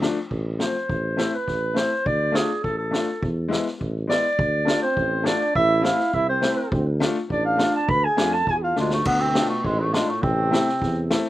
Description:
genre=klezmer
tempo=103 BPM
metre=2/4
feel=straight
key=D dorian sharp4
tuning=A4 = 443 Hz
part: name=clear upright piano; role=accompaniment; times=0.0-11.3 s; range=F3 to F4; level=-26 LUFS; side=left 3 dB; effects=none
part: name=mellow tuba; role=bass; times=0.0-11.2 s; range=A1 to F2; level=-26 LUFS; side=equal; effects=none
part: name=street-band drum kit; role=drums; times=0.0-11.2 s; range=crash cymbal, kick drum, snare drum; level=-27 LUFS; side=equal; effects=none
part: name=warm clarinet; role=melody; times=0.6-11.1 s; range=G#3 to B5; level=-23 LUFS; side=equal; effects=slapback echo
part: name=warm trombone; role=second line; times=4.8-11.1 s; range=G#2 to B4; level=-28 LUFS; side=right 3 dB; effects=none
room=little or no reverb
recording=recorded outdoors, with no room sound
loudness=-20 LUFS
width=side -15 dB against mid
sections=0.0-9.1 A section; 9.1-11.3 B section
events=clarinet solo 0.0-9.1; drum fill 8.8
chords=0.0 Dm; 0.9 Am; 2.1 Dm; 3.2 E; 4.4 Dm; 5.6 Am; 6.7 Dm; 10.2 Am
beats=0.31 | 0.89 1.48 | 2.06 2.65 | 3.23 3.81 | 4.40 4.98 | 5.56 6.15 | 6.73 7.31 | 7.90 8.48 | 9.06 9.65 | 10.23 10.81

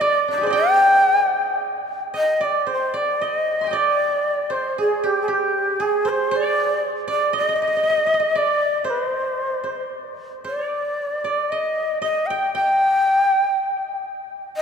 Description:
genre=japanese traditional, Japanese chamber music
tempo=58 BPM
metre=2/4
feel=rubato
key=G miyako bushi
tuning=A4 = 440 Hz
part: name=breathy bright shakuhachi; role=melody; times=0.0-14.6 s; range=G4 to G5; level=-19 LUFS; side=left 1 dB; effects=none
part: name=koto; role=second line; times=0.0-14.0 s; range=D4 to C6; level=-24 LUFS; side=right 6 dB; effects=none
room=wet cathedral reverb, RT60 5.0 s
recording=minimal, uncompressed stereo recording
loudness=-18 LUFS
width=side -6 dB against mid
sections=0.0-2.2 A section; 2.2-14.6 B section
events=none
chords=none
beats=| 0.03 1.09 | 2.18 3.23 | 4.26 5.28 | 6.31 7.33 | 8.35 9.39 | 10.46 11.51 | 12.54 13.55 | 14.57

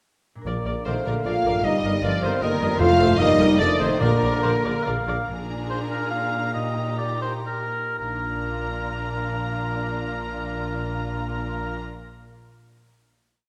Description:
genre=classical, dramatic, fast romantic movement for symphony orchestra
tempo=110-158 BPM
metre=3/4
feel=rubato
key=Bb major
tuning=A4 = 440 Hz
part: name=concert harp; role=arpeggios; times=0.4-12.4 s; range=F2 to D5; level=-37 LUFS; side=equal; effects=none
part: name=clear oboe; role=second line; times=0.5-11.8 s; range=Bb4 to F5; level=-32 LUFS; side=equal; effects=none
part: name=dark bassoon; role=accompaniment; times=0.5-5.1 s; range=G3 to Bb3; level=-32 LUFS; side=equal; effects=none
part: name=rich studio viola section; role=accompaniment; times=0.5-11.8 s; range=D4 to Eb5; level=-36 LUFS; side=equal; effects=none
part: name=rich symphonic double bass section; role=bass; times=0.5-5.7, 8.0-11.8 s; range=F1 to Bb1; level=-33 LUFS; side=equal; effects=none
part: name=warm tuba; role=bass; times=0.5-5.2 s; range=F1 to Bb1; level=-34 LUFS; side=equal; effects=none
part: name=timpani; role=percussion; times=0.5-4.6 s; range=F2 to Bb2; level=-30 LUFS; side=equal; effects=none
part: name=rich symphonic violin section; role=melody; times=0.9-11.8 s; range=Bb4 to Bb5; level=-36 LUFS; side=equal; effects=none
part: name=concert flute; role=second line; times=0.9-4.8 s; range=Bb4 to F5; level=-31 LUFS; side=equal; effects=none
part: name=warm clarinet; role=second line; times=0.9-4.9 s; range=Bb4 to F5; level=-32 LUFS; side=equal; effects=none
part: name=warm studio violin section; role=second line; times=0.9-11.8 s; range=F4 to F5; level=-36 LUFS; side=equal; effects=none
part: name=dark French horn section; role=sustained chords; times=0.9-4.8 s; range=Bb3 to F4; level=-27 LUFS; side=equal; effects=none
part: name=rich symphonic cello section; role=bass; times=0.9-11.8 s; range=Bb2 to Bb3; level=-33 LUFS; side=equal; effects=none
room=wet scoring stage reverb, RT60 1.9 s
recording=none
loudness=-24 LUFS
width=mono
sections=0.5-5.3 A section; 5.3-8.0 coda; 8.0-11.0 final chord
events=slowing down 4.6-8.0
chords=0.5 Bb; 1.6 Eb/G; 2.8 F; 3.2 Eb/G; 3.6 F7; 4.0 Bb; 5.3 Bb7; 6.5 Eb/Bb; 8.0 Bb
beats=| 0.46 0.86 1.25 | 1.65 2.03 2.42 | 2.80 3.20 3.60 | 4.01 4.44 4.86 | 5.28 5.70 6.12 | 6.54 6.99 7.47 | 8.00 8.51 9.02 | 9.53 10.03 10.53

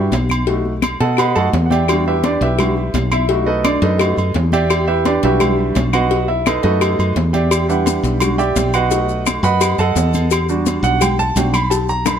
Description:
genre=latin, salsa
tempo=171 BPM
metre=4/4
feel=straight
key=E minor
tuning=A4 = 440 Hz
part: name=clear grand piano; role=accompaniment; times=0.0-12.2 s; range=G3 to B5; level=-18 LUFS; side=right 3 dB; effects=none
part: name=woody fretless electric bass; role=bass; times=0.0-12.2 s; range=B1 to B2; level=-19 LUFS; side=left 1 dB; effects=none
part: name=congas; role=percussion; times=0.1-12.2 s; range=none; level=-24 LUFS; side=left 3 dB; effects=none
part: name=cowbell and bongos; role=percussion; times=0.1-12.2 s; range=none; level=-23 LUFS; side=left 7 dB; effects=none
part: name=timbales and agogo bells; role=percussion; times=0.1-12.2 s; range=none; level=-24 LUFS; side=right 4 dB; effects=none
part: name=claves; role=percussion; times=0.3-12.2 s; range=none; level=-26 LUFS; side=left 7 dB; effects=none
part: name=maracas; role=percussion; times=7.5-12.2 s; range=none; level=-28 LUFS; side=left 8 dB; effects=none
room=light reverb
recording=none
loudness=-14 LUFS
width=side -8 dB against mid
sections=0.0-12.2 A section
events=grand piano solo 0.0-12.2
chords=0.5 B7; 1.9 Em7; 3.3 B7; 4.7 Em7; 6.1 B7; 7.5 Em7; 8.9 B7; 10.3 Em7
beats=0.13 | 0.48 0.83 1.19 1.54 | 1.89 2.24 2.60 2.95 | 3.30 3.65 4.00 4.36 | 4.71 5.06 5.41 5.76 | 6.11 6.46 6.82 7.17 | 7.52 7.87 8.22 8.57 | 8.92 9.27 9.62 9.97 | 10.32 10.67 11.02 11.37 | 11.72 12.07

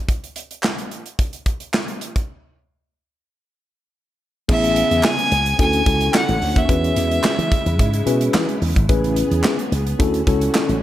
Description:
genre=early-eighties boogie funk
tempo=109 BPM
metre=4/4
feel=straight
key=unclear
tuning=A4 = 439 Hz
part: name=modern studio drum kit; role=drums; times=0.1-10.8 s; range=crash cymbal, handclaps, hi-hat, kick drum, snare drum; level=-21 LUFS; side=equal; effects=gated reverb
part: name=group handclap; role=percussion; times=0.6-10.7 s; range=none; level=-29 LUFS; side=right 3 dB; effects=none
part: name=clear violin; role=melody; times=4.5-8.2 s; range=E5 to G#5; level=-20 LUFS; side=equal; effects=slapback echo
part: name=mellow tine electric piano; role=accompaniment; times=4.5-10.8 s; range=B3 to B4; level=-21 LUFS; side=left 2 dB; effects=medium stereo tremolo
part: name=soft string machine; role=sustained chords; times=4.5-10.8 s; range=C#3 to G#4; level=-28 LUFS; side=right 1 dB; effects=ensemble chorus
part: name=slap bass with an envelope filter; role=bass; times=4.5-10.8 s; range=G#1 to E3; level=-21 LUFS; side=equal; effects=none
room=small room ambience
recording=none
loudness=-16 LUFS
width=side -13 dB against mid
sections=0.0-4.5 A section; 4.5-10.8 B section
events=break 2.3-4.5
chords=0.0 N.C.; 4.5 Amaj9; 5.6 Dmaj7; 6.7 E6; 8.9 Amaj9; 10.0 Dmaj7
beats=| 0.09 0.64 1.19 1.74 | 2.29 2.84 3.39 3.94 | 4.49 5.04 5.59 6.14 | 6.69 7.24 7.79 8.34 | 8.89 9.44 9.99 10.54

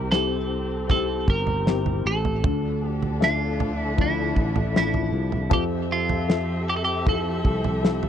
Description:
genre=pop ballad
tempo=78 BPM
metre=4/4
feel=straight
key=F major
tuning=A4 = 435 Hz
part: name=twelve-string electric guitar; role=melody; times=0.0-8.1 s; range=E4 to C5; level=-27 LUFS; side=right 3 dB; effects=none
part: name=dark upright piano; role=accompaniment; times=0.0-8.1 s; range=C3 to E5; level=-30 LUFS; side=left 20 dB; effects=none
part: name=warm studio string section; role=sustained chords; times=0.0-8.1 s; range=D3 to E5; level=-31 LUFS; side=left 1 dB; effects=none
part: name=sustaining fretless electric bass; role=bass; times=0.0-8.1 s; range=G1 to F2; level=-27 LUFS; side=right 1 dB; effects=none
part: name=damped 70s drum kit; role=drums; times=0.1-8.1 s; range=kick drum, snare drum, toms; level=-24 LUFS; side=right 1 dB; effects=none
room=little or no reverb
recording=dry, close 1970s-style studio recording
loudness=-21 LUFS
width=side -9 dB against mid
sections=0.0-8.1 A section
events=none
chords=0.0 C; 2.4 Dmadd9; 5.5 Fmaj7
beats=0.12 0.90 1.67 | 2.45 3.22 3.99 4.75 | 5.52 6.29 7.06 7.83

